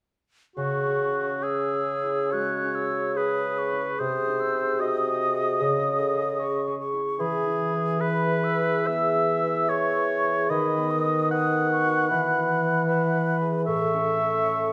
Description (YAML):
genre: classical, slow romantic movement for symphony orchestra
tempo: 65-78 BPM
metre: 4/4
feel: rubato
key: C# minor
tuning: A4 = 440 Hz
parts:
  - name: dark clarinet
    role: second line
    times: 0.6-14.7 s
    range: F#4 to B4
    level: -34 LUFS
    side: equal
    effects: none
  - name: mellow hollow silver concert flute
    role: second line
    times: 0.6-14.7 s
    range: B5 to F#6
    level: -33 LUFS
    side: equal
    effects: none
  - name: warm oboe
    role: second line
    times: 0.6-14.7 s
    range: F#4 to F#5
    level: -29 LUFS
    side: equal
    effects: none
  - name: mellow bassoon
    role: accompaniment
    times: 0.6-14.7 s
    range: B#2 to A3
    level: -31 LUFS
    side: equal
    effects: none
  - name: concert harp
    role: arpeggios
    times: 0.6-14.7 s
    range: A2 to E5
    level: -33 LUFS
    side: equal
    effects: none
room: wet scoring stage reverb, RT60 1.5 s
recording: none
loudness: -25 LUFS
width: mono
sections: 0.6-14.7 A section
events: none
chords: 0.6 C#m; 4.0 G#7/B#; 5.6 C#m; 7.2 E; 10.5 B7/D#; 12.1 E; 13.7 A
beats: | 0.56 1.43 2.32 3.17 | 3.99 4.80 5.60 6.40 | 7.20 8.01 8.88 9.71 | 10.50 11.31 12.11 12.88 | 13.67 14.46